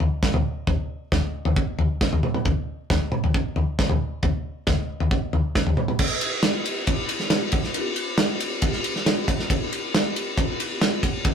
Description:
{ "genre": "rock", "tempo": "136 BPM", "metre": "4/4", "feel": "straight", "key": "none", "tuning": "none", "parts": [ { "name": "loose indie drum kit", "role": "drums", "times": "0.0-11.3 s", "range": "crash cymbal, kick drum, ride cymbal, snare drum, toms", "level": "-21 LUFS", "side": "equal", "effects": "none" } ], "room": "moderate studio reverb, RT60 0.5 s", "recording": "rough rehearsal-room recording, warm saturation", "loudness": "-21 LUFS", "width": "side -7 dB against mid", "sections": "0.0-6.0 A section; 6.0-11.3 B section", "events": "none", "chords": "none", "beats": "0.23 | 0.67 1.12 1.56 2.01 | 2.45 2.90 3.34 3.79 | 4.23 4.67 5.12 5.56 | 6.00 6.44 6.88 7.32 | 7.75 8.19 8.63 9.07 | 9.50 9.94 10.38 10.81 | 11.25" }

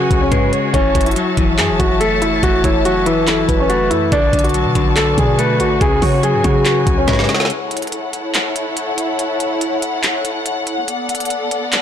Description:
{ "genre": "hip hop, trap", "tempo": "142 BPM", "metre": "4/4", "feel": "half-time", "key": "F# minor", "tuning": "A4 = 437 Hz", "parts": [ { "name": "warm concert grand piano", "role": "melody", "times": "0.0-7.5 s", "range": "C#4 to B4", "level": "-17 LUFS", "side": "equal", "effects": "ping-pong delay" }, { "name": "warm velvety synth lead", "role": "second line", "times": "0.0-7.5 s", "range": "G#4 to C#5", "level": "-22 LUFS", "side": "right 2 dB", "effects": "chorus, ping-pong delay" }, { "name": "clean electric guitar", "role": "accompaniment", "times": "0.0-7.5 s", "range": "C#3 to A3", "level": "-20 LUFS", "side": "left 5 dB", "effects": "spring reverb" }, { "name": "dark studio string section", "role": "sustained chords", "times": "0.0-11.8 s", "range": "B3 to A5", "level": "-21 LUFS", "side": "left 1 dB", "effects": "none" }, { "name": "clean 808-style bass", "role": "bass", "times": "0.0-7.3 s", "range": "F#1 to C#3", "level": "-21 LUFS", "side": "equal", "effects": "none" }, { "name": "trap drum kit", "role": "drums", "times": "0.1-11.8 s", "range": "handclaps, hi-hat, kick drum, snare drum", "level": "-18 LUFS", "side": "equal", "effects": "none" } ], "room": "little or no reverb", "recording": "blown-out, overdriven recording, overdrive", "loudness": "-14 LUFS", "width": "side -9 dB against mid", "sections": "0.0-7.5 A section; 7.5-11.8 B section", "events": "drum fill 7.1-7.5; break 7.5-11.8", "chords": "0.0 C#7sus4; 0.7 F#m7; 4.1 Bm7; 5.8 C#7sus4; 7.5 F#m7; 10.9 Bm7", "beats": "0.32 | 0.74 1.16 1.58 2.01 | 2.43 2.85 3.27 3.70 | 4.12 4.54 4.96 5.39 | 5.81 6.23 6.66 7.08 | 7.50 7.92 8.35 8.77 | 9.19 9.61 10.04 10.46 | 10.88 11.30 11.73" }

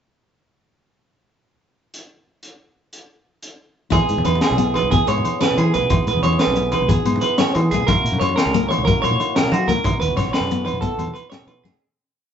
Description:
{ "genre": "highlife guitar band", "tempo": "121 BPM (dotted quarters)", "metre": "12/8", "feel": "straight", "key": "E major", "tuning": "A4 = 440 Hz", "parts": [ { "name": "crunchy breakbeat drum kit", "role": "drums", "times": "1.9-11.7 s", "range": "hi-hat, kick drum, snare drum", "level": "-23 LUFS", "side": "equal", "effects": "none" }, { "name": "picked steel-string acoustic guitar", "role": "accompaniment", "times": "3.9-11.8 s", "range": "G#3 to E4", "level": "-25 LUFS", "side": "left 4 dB", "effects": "none" }, { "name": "tonewheel organ", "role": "sustained chords", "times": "3.9-11.8 s", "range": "A#3 to G#4", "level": "-29 LUFS", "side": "equal", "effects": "overdrive, slow rotary speaker" }, { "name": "clean electric guitar", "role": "arpeggios", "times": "3.9-11.8 s", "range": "F#4 to C#5", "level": "-21 LUFS", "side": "right 2 dB", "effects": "none" }, { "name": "fingered electric bass", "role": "bass", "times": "3.9-11.7 s", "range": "B1 to F#3", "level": "-22 LUFS", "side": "equal", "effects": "none" }, { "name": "agogo bells", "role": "percussion", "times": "3.9-11.6 s", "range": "none", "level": "-29 LUFS", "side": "left 3 dB", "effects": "none" }, { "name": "congas", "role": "percussion", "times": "3.9-11.8 s", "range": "none", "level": "-28 LUFS", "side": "right 1 dB", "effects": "none" } ], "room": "moderate studio ambience, RT60 0.5 s", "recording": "band playing live in one room, nothing above 7.8 kHz", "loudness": "-16 LUFS", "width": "side -8 dB against mid", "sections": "1.9-3.9 pickup bar; 3.9-11.8 groove", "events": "fade-out 9.8-11.8; drum fill 11.6", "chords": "1.9 N.C.; 3.9 E; 7.9 F#7; 9.8 Bsus4", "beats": "| 1.93 2.43 2.92 3.42 | 3.92 4.41 4.91 5.41 | 5.90 6.40 6.89 7.39 | 7.88 8.37 8.87 9.36 | 9.85 10.34 10.83 11.32" }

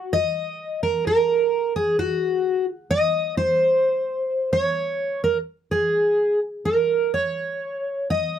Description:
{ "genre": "fado", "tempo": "64 BPM", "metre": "2/4", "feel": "rubato", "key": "Eb minor", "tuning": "A4 = 439 Hz", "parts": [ { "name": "fingerpicked twelve-string acoustic guitar", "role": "solo", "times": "0.0-8.4 s", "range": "Gb4 to Eb5", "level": "-20 LUFS", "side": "equal", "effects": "none" } ], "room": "light reverb", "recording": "dry, close 1970s-style studio recording", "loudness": "-20 LUFS", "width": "side -9 dB against mid", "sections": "0.0-8.4 A section", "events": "none", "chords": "none", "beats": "0.11 | 1.06 1.99 | 2.92 3.85 | 4.78 5.72 | 6.67 7.63" }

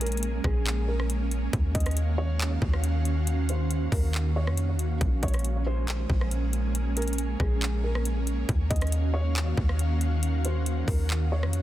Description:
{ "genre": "hip hop, atmospheric cloud-rap", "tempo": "138 BPM", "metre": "4/4", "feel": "half-time", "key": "unclear", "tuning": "A4 = 440 Hz", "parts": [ { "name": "felt-muted upright piano", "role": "melody", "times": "0.0-11.6 s", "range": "Ab4 to Eb5", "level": "-37 LUFS", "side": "equal", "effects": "digital delay" }, { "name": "ethereal airy pad", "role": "sustained chords", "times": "0.0-11.6 s", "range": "Eb3 to F5", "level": "-33 LUFS", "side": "right 2 dB", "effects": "ensemble chorus, built-in reverb, sidechain pumping" }, { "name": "warm 808-style bass", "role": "bass", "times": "0.0-11.6 s", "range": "Bb1 to F2", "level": "-26 LUFS", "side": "equal", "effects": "none" }, { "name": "trap drum kit", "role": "drums", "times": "0.0-11.6 s", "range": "handclaps, hi-hat, kick drum, rim click", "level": "-30 LUFS", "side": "equal", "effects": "soft clipping on snare" }, { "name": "wind-like tuned noise texture", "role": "texture", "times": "0.0-11.6 s", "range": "Db4 to Ab5", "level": "-42 LUFS", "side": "right 2 dB", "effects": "built-in reverb" } ], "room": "digital ambience", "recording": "dense, heavily limited modern master", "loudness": "-24 LUFS", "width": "side -14 dB against mid", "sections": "0.0-11.6 A section", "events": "none", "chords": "0.0 Bbm7; 1.5 Ebm9; 5.0 Bbm7; 8.5 Ebm9", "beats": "0.23 0.66 1.10 | 1.53 1.97 2.40 2.84 | 3.27 3.71 4.14 4.58 | 5.01 5.45 5.88 6.31 | 6.75 7.18 7.62 8.05 | 8.49 8.92 9.36 9.79 | 10.23 10.66 11.10 11.53" }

